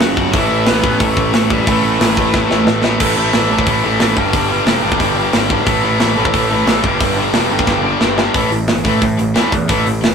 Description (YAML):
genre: punk rock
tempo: 180 BPM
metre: 4/4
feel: straight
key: unclear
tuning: A4 = 440 Hz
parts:
  - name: smooth overdriven lead guitar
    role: melody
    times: 0.0-2.6 s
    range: G3 to F#5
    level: -20 LUFS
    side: left 1 dB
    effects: none
  - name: overdriven electric guitar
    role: riff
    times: 0.0-10.1 s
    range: F#2 to A3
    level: -19 LUFS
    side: left 4 dB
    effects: none
  - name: raw garage guitar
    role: riff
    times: 0.0-10.1 s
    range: F#2 to A3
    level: -17 LUFS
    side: right 2 dB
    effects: overdrive
  - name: fuzz picked electric bass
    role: bass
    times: 0.0-10.1 s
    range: E1 to A2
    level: -20 LUFS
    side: equal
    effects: overdrive
  - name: tight metal drum kit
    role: drums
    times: 0.0-10.1 s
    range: crash cymbal, hi-hat, kick drum, snare drum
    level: -17 LUFS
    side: equal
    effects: none
room: light reverb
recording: rough rehearsal-room recording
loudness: -12 LUFS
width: side -6 dB against mid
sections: 0.0-3.0 A section; 3.0-8.3 B section; 8.3-10.1 C section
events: drum fill 2.3-3.0, 7.7-8.3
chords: 0.3 A5; 4.2 G5; 5.7 A5; 6.8 G5; 8.3 A5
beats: 0.01 | 0.34 0.67 1.01 1.34 | 1.67 2.00 2.34 2.67 | 3.00 3.34 3.67 4.00 | 4.33 4.67 5.00 5.33 | 5.67 6.00 6.34 6.67 | 7.00 7.34 7.67 8.01 | 8.34 8.68 9.02 9.35 | 9.69 10.03